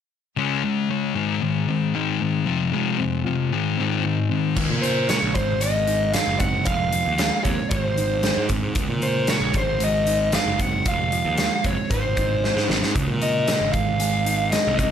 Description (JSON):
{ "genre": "quiet-loud alternative rock", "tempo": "114 BPM", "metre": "4/4", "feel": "straight", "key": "Ab mixolydian", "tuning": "A4 = 441 Hz", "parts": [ { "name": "mellow electric guitar", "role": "arpeggios", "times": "0.4-14.9 s", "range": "Ab2 to F4", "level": "-27 LUFS", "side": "right 3 dB", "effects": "wide subtle chorus, analog delay" }, { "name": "thick fuzz guitar", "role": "riff", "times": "0.4-4.5 s", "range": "F2 to Db4", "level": "-22 LUFS", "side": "left 8 dB", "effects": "distortion" }, { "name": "fuzz picked electric bass", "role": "bass", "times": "4.6-14.9 s", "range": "F1 to Bb2", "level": "-25 LUFS", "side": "equal", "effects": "overdrive" }, { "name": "big rock drum kit", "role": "drums", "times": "4.6-14.9 s", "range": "crash cymbal, hi-hat, kick drum, snare drum", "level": "-25 LUFS", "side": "equal", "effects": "none" }, { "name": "smooth overdriven lead guitar", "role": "melody", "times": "4.8-14.8 s", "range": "C5 to Gb5", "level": "-24 LUFS", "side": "equal", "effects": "none" } ], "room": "light reverb", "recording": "lossy compression artefacts", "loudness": "-20 LUFS", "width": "side -8 dB against mid", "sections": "0.4-4.6 A section; 4.6-14.9 B section", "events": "drum fill 12.4-13.0", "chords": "0.4 Db5; 1.2 Ab; 2.5 Fm; 3.5 Ab; 4.6 Db5; 5.4 Ab; 6.7 Fm; 7.7 Ab; 8.8 Db5; 9.5 Ab; 10.9 Fm; 11.9 Ab; 13.0 Db5; 13.7 Ab" }